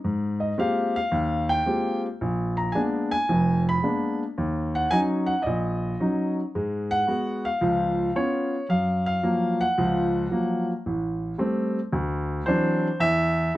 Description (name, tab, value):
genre	solo jazz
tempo	111 BPM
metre	4/4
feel	swing 69% on 8ths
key	unclear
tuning	A4 = 440 Hz
part	warm baby grand piano	solo	0.0-13.6 s	F1 to Cb6	-22 LUFS	equal	none
room	light reverb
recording	close, detailed microphones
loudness	-22 LUFS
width	side -16 dB against mid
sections	0.0-8.7 A section; 8.7-13.6 B section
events	none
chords	0.0 Abmaj13; 2.2 Bb7b9; 4.4 Ebm7; 6.5 Abm7; 7.6 Db7; 8.7 Gbmaj7; 10.9 Am7; 11.9 D9; 13.0 N.C.